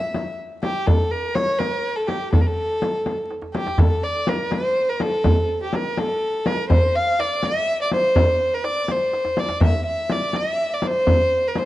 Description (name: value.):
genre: Persian modal ensemble.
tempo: 82 BPM (dotted quarters).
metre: 6/8.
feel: straight.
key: A dastgah homayun.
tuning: A4 = 440 Hz.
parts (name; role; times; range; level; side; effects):
dark violin; melody; 0.0-11.7 s; G4 to F5; -21 LUFS; equal; none.
frame drum; percussion; 0.1-11.7 s; none; -26 LUFS; left 3 dB; none.
tombak; percussion; 0.1-11.7 s; none; -21 LUFS; right 1 dB; none.
room: light reverb.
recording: dark, warm production, vinyl crackle, nothing above 10.6 kHz.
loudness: -18 LUFS.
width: side -15 dB against mid.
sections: 0.0-3.8 A section; 3.8-11.7 B section.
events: drum fill 3.3-3.8, 9.1-9.6.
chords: none.